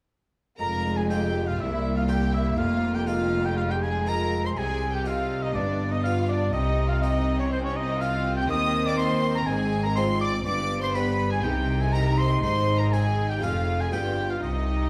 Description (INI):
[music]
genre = classical, baroque-style concerto movement with solo episodes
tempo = 122 BPM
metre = 4/4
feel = straight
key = F minor, C minor from 8.5 s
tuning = A4 = 440 Hz
[part]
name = rich chamber violin section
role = melody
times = 0.6-14.9 s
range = C5 to Eb6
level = -37 LUFS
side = equal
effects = none
[part]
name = warm oboe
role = melody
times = 0.6-14.9 s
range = C5 to Eb6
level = -32 LUFS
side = equal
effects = none
[part]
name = rich studio violin section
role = second line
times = 0.6-14.9 s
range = C4 to Eb5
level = -36 LUFS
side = equal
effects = none
[part]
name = harpsichord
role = accompaniment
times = 0.6-14.9 s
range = C2 to Ab4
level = -36 LUFS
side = equal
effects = none
[part]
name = rich studio viola section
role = accompaniment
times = 0.6-14.9 s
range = G3 to Ab4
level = -34 LUFS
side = equal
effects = none
[part]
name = clear chamber cello section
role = bass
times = 0.6-14.9 s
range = C2 to Eb3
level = -32 LUFS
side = equal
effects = none
[part]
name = rich chamber double bass section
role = bass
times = 0.6-14.9 s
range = F1 to Eb2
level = -30 LUFS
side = equal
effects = none
[sound]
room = wet recital hall reverb, RT60 1.5 s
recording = dark, warm production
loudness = -25 LUFS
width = mono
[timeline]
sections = 0.6-14.9 A section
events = none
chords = 0.6 Fm; 1.6 C5; 2.6 Fm; 4.6 Cm; 5.5 G7; 6.5 Cm; 8.5 Cm/Eb; 9.5 Fm/Ab; 10.5 G; 11.5 Cm; 12.4 Ab; 13.4 Fm; 13.9 G7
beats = | 0.60 1.10 1.60 2.09 | 2.58 3.08 3.57 4.07 | 4.56 5.06 5.55 6.04 | 6.53 7.03 7.51 8.01 | 8.50 8.99 9.48 9.97 | 10.46 10.96 11.45 11.95 | 12.44 12.93 13.43 13.93 | 14.43